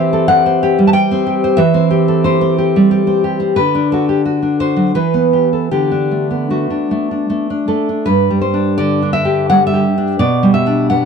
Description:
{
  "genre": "romantic piece for solo classical guitar",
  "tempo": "74-93 BPM",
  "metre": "3/4",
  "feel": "rubato",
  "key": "G major",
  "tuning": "A4 = 440 Hz",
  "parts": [
    { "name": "nylon-string guitar", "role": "solo", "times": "0.0-11.1 s", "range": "G2 to A5", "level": "-12 LUFS", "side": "equal", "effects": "none" }
  ],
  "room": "light reverb",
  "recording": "close, detailed microphones",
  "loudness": "-12 LUFS",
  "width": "side -6 dB against mid",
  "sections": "0.0-8.1 A section; 8.1-11.1 B section",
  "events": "none",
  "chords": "0.0 Am7/E; 3.6 D; 5.0 Em; 5.7 D; 8.1 G5; 10.2 G/B"
}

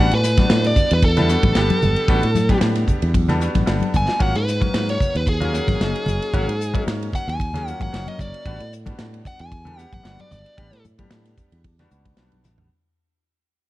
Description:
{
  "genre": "electric jazz fusion",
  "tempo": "113 BPM",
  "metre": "4/4",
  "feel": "swing 54% on 16ths",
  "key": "unclear",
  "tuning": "A4 = 445 Hz",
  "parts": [
    { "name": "biting lead guitar", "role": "melody", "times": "0.0-10.8 s", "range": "G#4 to G#5", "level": "-24 LUFS", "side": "equal", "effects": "overdrive" },
    { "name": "bright grand piano", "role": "accompaniment", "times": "0.0-12.7 s", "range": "F#3 to A4", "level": "-27 LUFS", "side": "left 1 dB", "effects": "none" },
    { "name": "fretless electric bass", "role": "bass", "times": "0.0-12.7 s", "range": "F#1 to A2", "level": "-22 LUFS", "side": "equal", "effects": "none" },
    { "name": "modern studio drum kit", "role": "drums", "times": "0.1-12.7 s", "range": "hi-hat, kick drum, ride cymbal, snare drum, toms", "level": "-22 LUFS", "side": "equal", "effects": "none" },
    { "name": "congas", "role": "percussion", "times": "0.4-12.6 s", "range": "none", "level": "-25 LUFS", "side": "left 2 dB", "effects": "none" }
  ],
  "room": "small room ambience",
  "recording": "dark, warm production",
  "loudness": "-17 LUFS",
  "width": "side -16 dB against mid",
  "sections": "0.0-12.7 A section",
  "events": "fade-out 0.0-12.7; lead electric guitar solo 0.0-12.7; drum fill 3.9, 12.4",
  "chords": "0.0 A13sus4; 4.2 G#13sus4; 8.5 A13sus4"
}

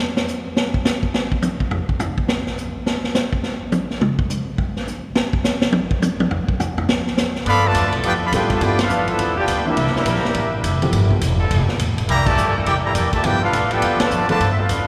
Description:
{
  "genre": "jazz, big band swing",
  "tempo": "208 BPM",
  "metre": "4/4",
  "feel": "swing 62% on 8ths",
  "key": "G major from 7.5 s",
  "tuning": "A4 = 441 Hz",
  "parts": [
    { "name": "vintage drum kit", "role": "drums", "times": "0.2-14.8 s", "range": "crash cymbal, hi-hat, kick drum, ride cymbal, snare drum, toms", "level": "-23 LUFS", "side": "equal", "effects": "none" },
    { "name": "clear trumpet section", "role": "melody", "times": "7.5-14.9 s", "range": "D4 to B5", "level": "-23 LUFS", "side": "equal", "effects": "none" },
    { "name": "muted trombone section", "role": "second line", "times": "7.5-14.9 s", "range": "Bb2 to G4", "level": "-27 LUFS", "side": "equal", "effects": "none" },
    { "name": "upright bass", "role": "bass", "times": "7.5-14.9 s", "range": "E1 to A2", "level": "-23 LUFS", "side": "equal", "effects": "none" },
    { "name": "bright trombone section", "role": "sustained chords", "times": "7.9-14.1 s", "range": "E3 to Bb4", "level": "-32 LUFS", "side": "equal", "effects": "none" },
    { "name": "warm baby grand piano", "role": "accompaniment", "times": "8.3-11.2, 13.2-14.4 s", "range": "E3 to A4", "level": "-28 LUFS", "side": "equal", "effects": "none" }
  ],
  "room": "wet cathedral reverb, RT60 6.0 s",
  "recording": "recorded in a church or concert hall",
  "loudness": "-19 LUFS",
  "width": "mono",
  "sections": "0.0-7.5 A section; 7.5-14.9 B section",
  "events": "drum solo 0.0-7.5; band accent 8.8, 12.2, 14.0",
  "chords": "0.0 N.C.; 7.5 G13; 9.8 C13; 10.9 G13; 12.1 C13; 13.2 G13"
}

